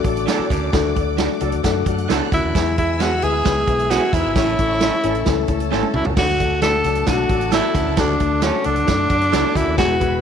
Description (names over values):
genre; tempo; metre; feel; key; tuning
uptempo 1960s-style soul; 132 BPM; 4/4; straight; D lydian; A4 = 440 Hz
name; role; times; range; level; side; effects
mellow horn section; second line; 0.0-9.8 s; E3 to A4; -30 LUFS; right 13 dB; none
warm studio string section; second line; 0.0-10.2 s; A4 to F#6; -31 LUFS; equal; none
dark upright piano; accompaniment; 0.0-10.2 s; E3 to A4; -23 LUFS; left 13 dB; none
tonewheel organ; sustained chords; 0.0-10.2 s; A4 to E6; -33 LUFS; equal; slow rotary speaker
vintage muted fingered electric bass; bass; 0.0-10.2 s; E1 to F#2; -24 LUFS; equal; none
swinging big-band drum kit; drums; 0.0-10.1 s; crash cymbal, hi-hat, kick drum, snare drum, toms; -23 LUFS; right 3 dB; none
growling baritone saxophone; riff; 0.3-10.0 s; D2 to A2; -27 LUFS; right 12 dB; none
electric guitar through a small old amp; stabs; 0.3-9.4 s; G#3 to A4; -28 LUFS; right 11 dB; tube saturation, lush chorus
breathy tenor saxophone; melody; 2.3-10.2 s; C#4 to A4; -20 LUFS; equal; none
room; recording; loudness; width
light reverb, small room ambience; 1960s-style stereo with parts hard left and right, lossy compression artefacts; -16 LUFS; side -8 dB against mid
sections
0.0-6.2 A section; 6.2-10.2 A section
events
drum fill 5.7-6.2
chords
0.0 D; 2.5 E; 4.4 A; 6.2 D